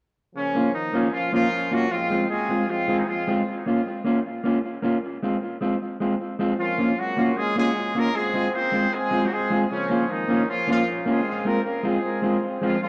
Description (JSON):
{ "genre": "ska", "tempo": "154 BPM", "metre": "4/4", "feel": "swing 55% on 8ths", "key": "Bb minor", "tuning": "A4 = 440 Hz", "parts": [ { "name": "warm horn section", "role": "melody", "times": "0.3-3.4, 6.6-12.9 s", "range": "Db3 to C5", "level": "-27 LUFS", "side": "equal", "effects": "tape echo, plate reverb" }, { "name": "mellow electric guitar", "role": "accompaniment", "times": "0.5-12.8 s", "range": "Ab3 to F4", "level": "-26 LUFS", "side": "equal", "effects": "tape echo, plate reverb" } ], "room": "wet studio reverb, RT60 0.6 s", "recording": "dark, warm production", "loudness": "-24 LUFS", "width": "mono", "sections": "0.3-12.8 A section", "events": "none", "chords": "0.3 Bbm; 1.9 Fm; 3.5 Bbm; 5.0 Fm; 6.6 Bbm; 8.1 Fm; 9.7 Bbm; 11.2 Fm", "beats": "| 0.33 0.72 1.11 1.50 | 1.89 2.28 2.67 3.06 | 3.45 3.84 4.23 4.62 | 5.01 5.40 5.79 6.18 | 6.57 6.96 7.35 7.74 | 8.13 8.52 8.91 9.30 | 9.69 10.08 10.47 10.86 | 11.24 11.63 12.02 12.41 | 12.80" }